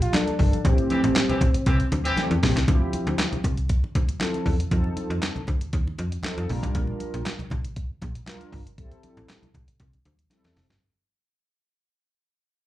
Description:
early-eighties boogie funk; 118 BPM; 4/4; straight; D minor; A4 = 444 Hz
expressive synth lead; melody; 0.0-2.2 s; C4 to F4; -27 LUFS; equal; chorus, slapback echo, plate reverb
slap-like FM bass; bass; 0.0-10.8 s; F1 to F2; -25 LUFS; equal
clean 12-bit digital drum machine; drums; 0.0-10.8 s; handclaps, hi-hat, kick drum, snare drum; -25 LUFS; equal
mellow synth brass; accompaniment; 0.1-10.7 s; E3 to Bb4; -29 LUFS; left 1 dB; chorus, plate reverb, slapback echo
congas; percussion; 0.1-10.7 s; -33 LUFS; equal
clear horn section; second line; 0.9-2.2 s; E3 to G4; -29 LUFS; left 1 dB; slapback echo, plate reverb
light reverb; live gig heard through the venue's PA, club reverb; -22 LUFS; side -14 dB against mid
0.0-2.7 A section; 2.7-10.8 B section
band accent 0.6-2.7; drum fill 2.2-2.7, 10.3-10.8; fade-out 2.7-10.8
0.0 Bb6; 0.6 Am7; 2.7 Dm11; 4.7 F7; 6.5 Bb6; 8.8 Am7

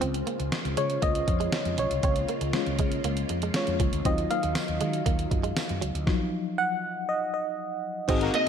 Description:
1980s-style pop; 119 BPM; 4/4; straight; A4 = 438 Hz
FM electric piano with auto-pan; accompaniment; 0.0-8.5 s; F3 to Gb5; -29 LUFS; left 2 dB
string machine, full ensemble; sustained chords; 0.0-8.5 s; C3 to Gb4; -36 LUFS; equal; phaser, ensemble chorus
direct-recorded clean electric guitar; riff; 0.0-8.5 s; F3 to C4; -35 LUFS; right 8 dB; wide subtle chorus, digital delay
mellow fretless electric bass; bass; 0.0-8.3 s; Ab1 to Eb3; -31 LUFS; equal; lush chorus
clean 12-bit digital drum machine; drums; 0.0-8.5 s; crash cymbal, hi-hat, kick drum, snare drum, tambourine; -29 LUFS; equal; gated reverb
analog synth brass; stabs; 8.2-8.3 s; Bb3 to Bb4; -32 LUFS; left 3 dB; chorus, digital delay
lead guitar through a small cranked amp; melody; 8.4-8.5 s; Eb5; -23 LUFS; left 1 dB; overdrive
light reverb, digital ambience; -25 LUFS; side -8 dB against mid
0.0-8.1 A section
FM electric piano solo 0.0-8.1
0.0 Db; 4.1 Ebmadd9

